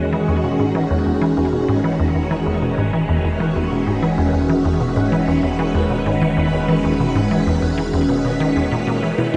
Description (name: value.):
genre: ambient, sequencer-driven space music.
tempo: 96 BPM.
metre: 4/4.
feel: straight.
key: E major.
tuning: A4 = 442 Hz.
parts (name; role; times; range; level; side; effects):
phased string machine; sustained chords; 0.0-9.4 s; D#3 to B4; -21 LUFS; equal; ensemble chorus, phaser.
resonant blip pluck; riff; 0.0-9.4 s; E2 to E3; -22 LUFS; equal; chorus, tape echo.
round analog bass; bass; 0.0-9.4 s; E1; -37 LUFS; equal; tube saturation.
pulsing gated texture; texture; 0.9-9.4 s; F#4 to E5; -40 LUFS; equal; none.
soft round pluck; arpeggios; 9.2-9.4 s; E4; -23 LUFS; equal; chorus.
room: wet plate reverb, RT60 2.7 s.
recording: dreamy mix soaked in reverb, nothing above 10.3 kHz.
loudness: -18 LUFS.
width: mono.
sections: 0.0-9.4 A section.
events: fade-in on analog synth bass 0.0-9.4.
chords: 0.0 Emaj7.